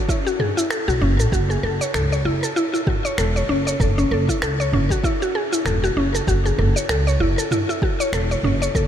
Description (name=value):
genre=organic downtempo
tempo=97 BPM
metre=4/4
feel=swing 57% on 16ths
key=F# minor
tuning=A4 = 440 Hz
part: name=mallet-like synth pluck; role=arpeggios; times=0.0-8.9 s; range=C#4 to C#5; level=-21 LUFS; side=left 1 dB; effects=chorus, ping-pong delay, shimmer reverb
part: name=deep house drum kit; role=drums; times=0.1-8.9 s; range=finger snaps, shaker, toms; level=-27 LUFS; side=right 1 dB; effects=none
part: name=electronic kick drum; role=drums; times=0.1-8.9 s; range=none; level=-23 LUFS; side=equal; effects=none
part: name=upright bass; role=bass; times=0.9-8.9 s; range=E1 to C#2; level=-21 LUFS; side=equal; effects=none
room=moderate huge ambient reverb, RT60 7.8 s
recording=dreamy mix soaked in reverb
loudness=-18 LUFS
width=side -9 dB against mid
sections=0.0-8.9 A section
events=none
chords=0.0 F#m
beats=0.09 0.71 | 1.32 1.94 2.56 3.18 | 3.80 4.42 5.04 5.66 | 6.27 6.89 7.51 8.13 | 8.75